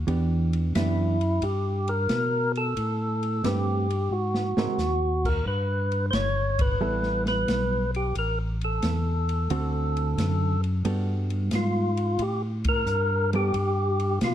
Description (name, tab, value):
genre	soul jazz organ trio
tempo	89 BPM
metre	4/4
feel	swing 68% on 8ths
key	G major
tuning	A4 = 440 Hz
part	tonewheel organ	bass	0.0-14.3 s	G1 to B2	-26 LUFS	equal	overdrive, chorus vibrato, slow rotary speaker
part	hollow-body jazz guitar	accompaniment	0.1-13.5 s	D3 to B4	-29 LUFS	right 3 dB	none
part	open jazz drum kit	drums	0.1-14.3 s	crash cymbal, hi-hat, kick drum, ride cymbal, snare drum	-32 LUFS	equal	none
part	percussive tonewheel organ	melody	0.8-14.3 s	E4 to C#5	-27 LUFS	equal	slow rotary speaker, overdrive
room	light reverb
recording	dark, warm production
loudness	-23 LUFS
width	side -11 dB against mid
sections	0.0-14.3 A section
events	drum fill 4.1-4.8; band accent 6.5-6.8, 12.5-12.9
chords	0.1 Em7; 2.8 Am9; 4.1 Ab9; 5.5 G69; 8.2 A5; 9.5 D7; 10.9 Gmaj9